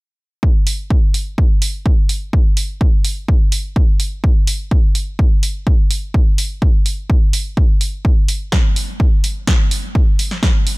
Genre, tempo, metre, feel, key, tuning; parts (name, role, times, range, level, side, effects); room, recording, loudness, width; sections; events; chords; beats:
filtered disco house; 126 BPM; 4/4; straight
electronic kick drum; drums; 0.4-10.5 s; -14 LUFS; equal
punchy analog drum machine; drums; 0.7-10.8 s; hi-hat, snare drum; -22 LUFS; right 2 dB; sidechain pumping on hats
little or no reverb; -13 LUFS; side -25 dB against mid
0.4-10.8 A section
| 0.43 0.91 1.38 1.86 | 2.33 2.81 3.29 3.76 | 4.24 4.71 5.19 5.67 | 6.14 6.62 7.10 7.57 | 8.05 8.52 9.00 9.48 | 9.95 10.43